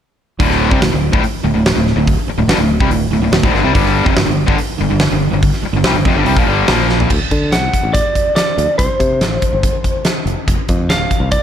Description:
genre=classic rock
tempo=143 BPM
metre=4/4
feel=straight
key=unclear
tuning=A4 = 441 Hz
part: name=distorted electric guitar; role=riff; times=0.4-7.1 s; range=D2 to Bb3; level=-17 LUFS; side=left 10 dB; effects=overdrive
part: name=distorted electric guitar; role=riff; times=0.4-7.1 s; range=D2 to Bb3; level=-18 LUFS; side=right 10 dB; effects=distortion
part: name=modern bright fingered electric bass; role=bass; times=0.4-11.4 s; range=D1 to D3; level=-18 LUFS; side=equal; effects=none
part: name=huge arena drum kit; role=drums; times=0.4-11.4 s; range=crash cymbal, hi-hat, kick drum, snare drum, toms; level=-16 LUFS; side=equal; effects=none
part: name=lightly driven lead guitar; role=melody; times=7.5-11.4 s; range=C5 to F#5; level=-17 LUFS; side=equal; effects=slapback echo
room=light reverb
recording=none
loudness=-12 LUFS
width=side -9 dB against mid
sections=0.4-7.1 A section; 7.1-11.4 B section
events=drum fill 6.9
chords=0.4 D5; 3.7 G5; 6.7 Bb5; 7.1 D; 8.8 C5; 10.3 F5

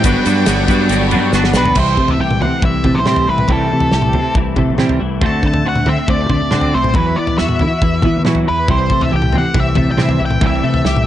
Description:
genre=indie rock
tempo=139 BPM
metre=4/4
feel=straight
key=unclear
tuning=A4 = 440 Hz
part: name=octave-fuzz lead guitar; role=melody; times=0.0-11.1 s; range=A4 to A5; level=-19 LUFS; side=equal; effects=distortion, slapback echo, plate reverb
part: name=string machine, violins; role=sustained chords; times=0.0-1.8 s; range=G4 to B5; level=-31 LUFS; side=right 1 dB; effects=none
part: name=twelve-string electric guitar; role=riff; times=0.0-11.1 s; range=E3 to G4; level=-20 LUFS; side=left 7 dB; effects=ensemble chorus
part: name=twelve-string electric guitar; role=riff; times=0.0-11.0 s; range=E2 to F#4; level=-20 LUFS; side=right 7 dB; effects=ensemble chorus
part: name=growling fingered electric bass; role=bass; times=0.0-11.1 s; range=G1 to E3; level=-18 LUFS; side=equal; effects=overdrive
part: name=loose indie drum kit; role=drums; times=0.0-11.1 s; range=crash cymbal, kick drum, ride cymbal, snare drum, toms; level=-18 LUFS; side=equal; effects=none
part: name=egg shaker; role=percussion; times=0.0-1.6 s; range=none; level=-31 LUFS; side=left 14 dB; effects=none
room=light reverb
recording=nothing above 10.9 kHz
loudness=-12 LUFS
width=side -12 dB against mid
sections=0.0-1.8 A section; 1.8-11.1 B section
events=drum fill 1.3-1.8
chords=0.1 Gmaj7; 1.8 C6; 5.2 D7; 7.0 Esus2; 8.7 C6

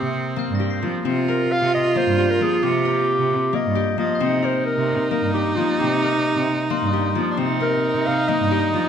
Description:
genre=contemporary instrumental, chamber music in an uneven meter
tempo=265 BPM (eighths)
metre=7/8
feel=straight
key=C minor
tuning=A4 = 440 Hz
part: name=warm clarinet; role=melody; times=0.0-8.9 s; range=F4 to F5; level=-23 LUFS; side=equal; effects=none
part: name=clear viola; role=second line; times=0.0-8.9 s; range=C4 to F4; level=-23 LUFS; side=right 2 dB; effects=none
part: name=concert harp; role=arpeggios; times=0.0-8.9 s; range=Bb3 to Bb4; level=-25 LUFS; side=left 10 dB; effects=none
part: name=rich cello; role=bass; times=0.0-8.8 s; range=G2 to F3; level=-25 LUFS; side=right 4 dB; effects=none
part: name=glockenspiel with hard plastic mallets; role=texture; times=0.0-8.0 s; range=C6 to C7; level=-33 LUFS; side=left 6 dB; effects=none
room=moderate recital hall reverb, RT60 1.3 s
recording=none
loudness=-18 LUFS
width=side -8 dB against mid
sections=0.0-8.9 A section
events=none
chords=0.0 Cm7

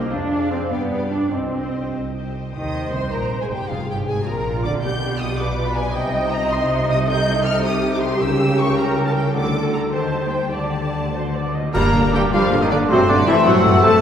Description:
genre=classical, dramatic, fast romantic movement for symphony orchestra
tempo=96-109 BPM (dotted quarters)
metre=6/8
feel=rubato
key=C minor, G minor from 7.1 s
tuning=A4 = 440 Hz
part: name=rich studio violin section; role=melody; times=0.0-14.0 s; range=C5 to G6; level=-26 LUFS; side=left 4 dB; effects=none
part: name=rich symphonic violin section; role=second line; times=0.0-14.0 s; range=A3 to Eb5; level=-28 LUFS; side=left 1 dB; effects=none
part: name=warm symphonic viola section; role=accompaniment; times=0.0-14.0 s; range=C3 to Eb5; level=-23 LUFS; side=right 1 dB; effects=none
part: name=concert harp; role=arpeggios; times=0.0-14.0 s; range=F2 to D5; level=-27 LUFS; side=left 3 dB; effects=none
part: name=rich symphonic cello section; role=bass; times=0.0-14.0 s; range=F2 to D4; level=-25 LUFS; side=right 1 dB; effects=none
part: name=rich symphonic double bass section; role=bass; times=0.0-13.9 s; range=F1 to G2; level=-26 LUFS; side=right 2 dB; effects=none
part: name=mellow large flute ensemble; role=second line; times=0.1-2.2, 11.7-14.0 s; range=D5 to E6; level=-23 LUFS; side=equal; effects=none
part: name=cymbal swell, clash cymbals and concert bass drum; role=percussion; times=9.4-12.5 s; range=none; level=-30 LUFS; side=equal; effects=none
part: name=timpani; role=percussion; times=11.1-11.7 s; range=D3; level=-31 LUFS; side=right 1 dB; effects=none
part: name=mellow cor anglais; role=second line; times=11.7-13.9 s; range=C4 to Bb4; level=-24 LUFS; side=right 1 dB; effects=none
part: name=mellow French horn section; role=sustained chords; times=11.8-14.0 s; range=C4 to Bb4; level=-22 LUFS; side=left 4 dB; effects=none
part: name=warm trombone section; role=sustained chords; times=12.1-13.9 s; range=C3 to Bb3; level=-26 LUFS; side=right 1 dB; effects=none
room=wet concert hall reverb, RT60 2.2 s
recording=heard from further back in the room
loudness=-17 LUFS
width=side -8 dB against mid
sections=0.0-2.6 A section; 2.6-11.7 A section; 11.7-14.0 B section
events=timpani fill 11.1-11.7; band accent 11.7-12.1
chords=0.1 Ddim/F; 0.7 G7; 1.3 Cm; 3.7 Dm7b5/F; 4.8 G7/B; 5.9 Cm; 7.1 Am7b5/C; 8.2 C#dim7; 9.3 D; 9.9 Cm/Eb; 10.5 Dsus4; 11.1 D; 11.7 Gm; 12.9 F#dim/G

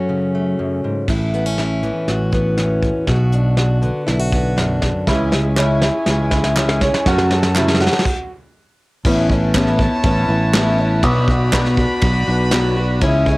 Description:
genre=indie folk with a building arrangement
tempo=121 BPM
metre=4/4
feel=straight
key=A major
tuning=A4 = 439 Hz
part: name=fingerpicked plugged-in steel-string acoustic guitar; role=accompaniment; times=0.0-5.1 s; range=E2 to F#4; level=-19 LUFS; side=left 1 dB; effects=cassette tape
part: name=fingered electric bass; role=bass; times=1.1-13.4 s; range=A1 to F#2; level=-18 LUFS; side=equal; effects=none
part: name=soft brush drum kit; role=drums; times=1.1-13.4 s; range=crash cymbal, hi-hat, kick drum, ride cymbal, snare drum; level=-20 LUFS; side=equal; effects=cassette tape
part: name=picked twelve-string acoustic guitar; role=accompaniment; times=5.1-13.4 s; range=F#2 to F#4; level=-20 LUFS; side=left 2 dB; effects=cassette tape
part: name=clear brass ensemble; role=sustained chords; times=5.1-13.4 s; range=E4 to B5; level=-24 LUFS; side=equal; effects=cassette tape
part: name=warm upright piano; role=arpeggios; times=5.1-8.3 s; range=C#4 to F#4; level=-22 LUFS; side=right 2 dB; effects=cassette tape
part: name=group handclap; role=percussion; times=5.6-12.6 s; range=none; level=-24 LUFS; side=right 3 dB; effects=none
room=light reverb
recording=home recording on cassette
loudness=-14 LUFS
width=side -21 dB against mid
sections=0.0-1.1 A section; 1.1-9.1 B section; 9.1-13.4 C section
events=build-up 1.1-9.1; drum fill 1.1-8.1; stop 8.1-9.1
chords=0.0 F#m; 1.1 Aadd9; 3.1 Bm; 5.1 C#m; 7.1 F#m; 9.1 Aadd9; 11.0 Bm

